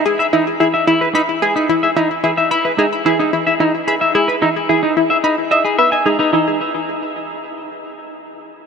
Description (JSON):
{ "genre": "ambient, sequencer-driven space music", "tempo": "110 BPM", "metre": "4/4", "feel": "straight", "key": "E major", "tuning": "A4 = 438 Hz", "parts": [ { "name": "semi-hollow electric guitar", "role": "arpeggios", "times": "0.0-6.6 s", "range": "D#4 to G#5", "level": "-16 LUFS", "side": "equal", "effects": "auto-pan, ping-pong delay" }, { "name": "analog pluck", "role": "riff", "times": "0.1-6.6 s", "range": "E4 to B5", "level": "-17 LUFS", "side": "equal", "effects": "chorus, ping-pong delay" } ], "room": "wet huge ambient reverb, RT60 9.1 s", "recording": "none", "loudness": "-13 LUFS", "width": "side -6 dB against mid", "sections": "0.0-6.3 A section; 6.3-8.7 B section", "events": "none", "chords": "0.0 Emaj7; 6.3 N.C." }